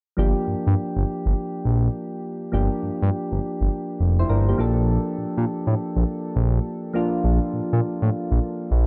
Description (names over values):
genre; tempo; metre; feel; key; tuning
R&B; 102 BPM; 4/4; swing 65% on 16ths; G minor; A4 = 440 Hz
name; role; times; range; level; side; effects
soft electric-piano-like synth keys; accompaniment; 0.2-8.9 s; F3 to C5; -28 LUFS; equal; chorus
smooth synth bass; bass; 0.2-8.9 s; F1 to Bb2; -22 LUFS; equal; none
room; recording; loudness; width
light reverb; dark, warm production; -23 LUFS; mono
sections
0.2-8.9 A section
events
none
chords
0.2 Gm7; 4.6 Bbmaj7